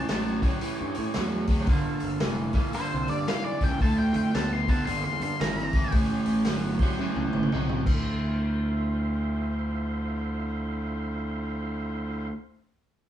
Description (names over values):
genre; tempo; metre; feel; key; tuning
blues rock power trio and southern rock; 113 BPM; 4/4; swing 63% on 8ths; D minor; A4 = 440 Hz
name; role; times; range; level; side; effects
octave-fuzz lead guitar; melody; 0.0-5.9 s; C5 to C6; -32 LUFS; left 2 dB; distortion
overdriven tonewheel organ; sustained chords; 0.0-12.3 s; Bb3 to B#5; -38 LUFS; right 1 dB; slow rotary speaker
overdriven electric guitar; riff; 0.0-7.8 s; G2 to B3; -28 LUFS; right 1 dB; spring reverb
fuzz fingered electric bass; bass; 0.1-12.3 s; F1 to A2; -30 LUFS; equal; overdrive
vintage drum kit; drums; 0.1-8.0 s; crash cymbal, hi-hat, kick drum, snare drum, toms; -27 LUFS; equal; none
room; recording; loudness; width
moderate studio reverb, RT60 0.7 s; band playing live in one room, studio ambience; -25 LUFS; side -11 dB against mid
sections
0.0-8.1 A section; 8.1-12.3 B section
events
lead electric guitar solo 0.0-8.1; tonewheel organ fill 6.5-8.1; drum fill 7.0-8.1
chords
0.0 A7#9; 1.7 Gm7; 3.8 Dm7; 4.9 Gm7; 5.9 A7#9; 7.8 Dm7